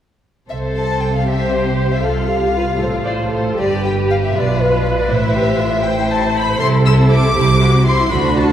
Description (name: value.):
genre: quick classical-period movement for symphony orchestra.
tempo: 79 BPM (dotted quarters).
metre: 6/8.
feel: rubato.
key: C major.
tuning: A4 = 440 Hz.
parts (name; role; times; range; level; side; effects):
warm chamber violin section; melody; 0.5-8.5 s; B4 to E6; -20 LUFS; left 3 dB; none.
rich chamber violin section; second line; 0.5-8.5 s; E4 to D5; -22 LUFS; left 2 dB; none.
clear studio double bass section; bass; 0.5-8.5 s; G1 to D2; -20 LUFS; right 1 dB; none.
warm studio cello section; bass; 0.5-8.5 s; G2 to D3; -19 LUFS; right 2 dB; none.
warm chamber viola section; accompaniment; 1.3-8.5 s; E4 to C5; -21 LUFS; right 1 dB; none.
room: wet concert hall reverb, RT60 2.1 s.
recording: heard from further back in the room.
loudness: -13 LUFS.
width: side -10 dB against mid.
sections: 0.5-8.5 A section.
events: none.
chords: 0.5 C5; 2.0 F/C; 3.6 G7; 5.1 Am; 6.6 C.